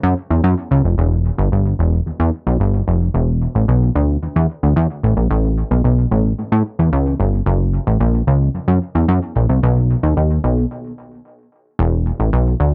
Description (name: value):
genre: funk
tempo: 111 BPM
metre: 4/4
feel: straight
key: E dorian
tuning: A4 = 438 Hz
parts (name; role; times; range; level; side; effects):
- plucky analog bass; solo; 0.0-12.7 s; E1 to A2; -17 LUFS; equal; tape echo
room: moderate booth ambience, RT60 0.2 s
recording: dry, close 1970s-style studio recording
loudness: -17 LUFS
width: mono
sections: 0.0-3.1 A section; 3.1-11.8 B section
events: break 10.7-11.8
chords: none